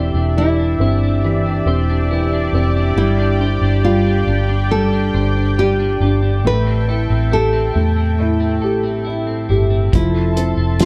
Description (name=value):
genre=pop ballad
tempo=69 BPM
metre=4/4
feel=straight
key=C major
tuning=A4 = 438 Hz
part: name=nylon-string guitar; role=melody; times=0.0-10.9 s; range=E4 to B4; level=-24 LUFS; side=equal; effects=none
part: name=felt-muted upright piano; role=accompaniment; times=0.0-10.9 s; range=E3 to G4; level=-23 LUFS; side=equal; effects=none
part: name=lush unison pad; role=sustained chords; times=0.0-10.9 s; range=G4 to C6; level=-26 LUFS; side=equal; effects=chorus
part: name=clean electric guitar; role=arpeggios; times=0.0-10.9 s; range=A2 to C5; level=-27 LUFS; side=equal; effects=lush chorus
part: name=vintage muted fingered electric bass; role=bass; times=0.0-10.9 s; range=E1 to E2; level=-20 LUFS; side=equal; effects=none
part: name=damped 70s drum kit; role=drums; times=9.9-10.9 s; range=hi-hat, kick drum, snare drum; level=-18 LUFS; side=equal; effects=none
room=moderate studio reverb, RT60 0.5 s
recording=dark, warm production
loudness=-16 LUFS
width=mono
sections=0.0-10.9 A section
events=none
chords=0.0 Cadd9/E; 3.0 G7sus4; 6.5 Am7; 9.9 Fmaj7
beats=0.37 1.24 2.11 | 2.98 3.85 4.72 5.59 | 6.46 7.33 8.20 9.07 | 9.94 10.81